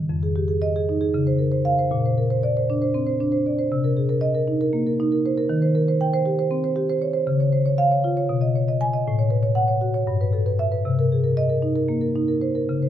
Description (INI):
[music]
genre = classical, contemporary piece for solo marimba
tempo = 234 BPM (eighths)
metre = 7/8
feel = rubato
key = unclear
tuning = A4 = 440 Hz
[part]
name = marimba with medium mallets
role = solo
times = 0.0-12.9 s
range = F2 to G#5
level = -19 LUFS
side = equal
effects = none
[sound]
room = light reverb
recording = close, detailed microphones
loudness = -19 LUFS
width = side -10 dB against mid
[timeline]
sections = 0.1-12.9 A section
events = none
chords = 0.1 Fm7; 1.1 Dbmaj7; 1.9 Bbadd9; 3.7 Cm7; 5.5 Eb6; 7.3 Db; 8.3 B69; 9.1 A69; 10.1 G69; 10.9 Cm7